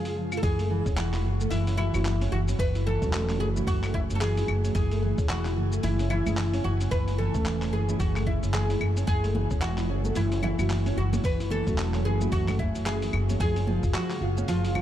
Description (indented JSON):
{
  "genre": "organic downtempo",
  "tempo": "111 BPM",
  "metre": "4/4",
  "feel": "swing 60% on 16ths",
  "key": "F# minor",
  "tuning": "A4 = 443 Hz",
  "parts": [
    { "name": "oud", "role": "melody", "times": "0.0-14.8 s", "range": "E4 to B4", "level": "-32 LUFS", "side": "equal", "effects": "ping-pong delay" },
    { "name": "muted felt-like synth keys", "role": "accompaniment", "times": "0.0-13.4 s", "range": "F#2 to A4", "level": "-35 LUFS", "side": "right 3 dB", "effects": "chorus, sidechain pumping" },
    { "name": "ethereal airy pad", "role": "sustained chords", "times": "0.0-14.8 s", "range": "F#2 to G#5", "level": "-36 LUFS", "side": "right 1 dB", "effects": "ensemble chorus, built-in reverb, sidechain pumping" },
    { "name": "nylon-string guitar", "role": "arpeggios", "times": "0.0-14.8 s", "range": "E3 to G#4", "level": "-33 LUFS", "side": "equal", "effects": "vintage 12-bit sampler grit" },
    { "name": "dusty soul sampler-style drum kit", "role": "drums", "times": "0.1-14.8 s", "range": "claves, handclaps, hi-hat, shaker", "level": "-37 LUFS", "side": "left 1 dB", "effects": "none" },
    { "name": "upright bass", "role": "bass", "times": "0.4-14.8 s", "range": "E1 to F#1", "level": "-27 LUFS", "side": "equal", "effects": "none" },
    { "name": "electronic kick drum", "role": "drums", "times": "0.4-13.9 s", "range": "none", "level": "-29 LUFS", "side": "equal", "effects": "none" },
    { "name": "congas and bongos", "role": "percussion", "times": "9.3-14.8 s", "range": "none", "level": "-35 LUFS", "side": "right 3 dB", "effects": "none" }
  ],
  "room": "small room ambience",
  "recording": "dark, warm production",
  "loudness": "-24 LUFS",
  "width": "side -12 dB against mid",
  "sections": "0.4-14.8 A section",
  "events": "none",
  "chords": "0.4 F#m7; 4.8 Amaj7; 9.1 F#m7; 13.4 C#/F#",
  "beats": "| 0.43 0.97 1.51 2.05 | 2.59 3.13 3.67 4.21 | 4.75 5.29 5.83 6.38 | 6.92 7.46 8.00 8.54 | 9.08 9.62 10.16 10.70 | 11.24 11.78 12.32 12.86 | 13.40 13.94 14.48"
}